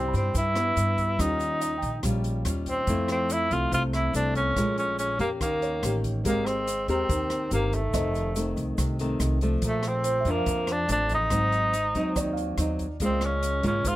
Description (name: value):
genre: bossa nova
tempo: 142 BPM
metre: 4/4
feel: straight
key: unclear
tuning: A4 = 440 Hz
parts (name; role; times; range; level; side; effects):
- breathy tenor saxophone; melody; 0.0-14.0 s; A3 to F4; -27 LUFS; equal; none
- nylon-string guitar; accompaniment; 0.0-14.0 s; F2 to Bb4; -29 LUFS; left 1 dB; none
- warm baby grand piano; accompaniment; 0.0-2.9, 5.6-14.0 s; C5 to B5; -37 LUFS; right 4 dB; none
- upright bass; bass; 0.0-14.0 s; F1 to G2; -29 LUFS; equal; none
- open jazz drum kit; drums; 0.1-13.9 s; hi-hat, kick drum, rim click; -34 LUFS; equal; none
- egg shaker; percussion; 0.1-14.0 s; none; -42 LUFS; right 6 dB; none
room: little or no reverb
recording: close, detailed microphones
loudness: -24 LUFS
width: side -16 dB against mid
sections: 0.0-14.0 A section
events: none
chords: 0.0 Cmaj7; 1.2 Eb9; 2.9 Fmaj7; 4.6 Bbm7; 5.4 Eb7; 6.3 Abmaj9; 7.9 F7; 9.6 Bbmaj7; 11.3 Ab7; 13.0 Db6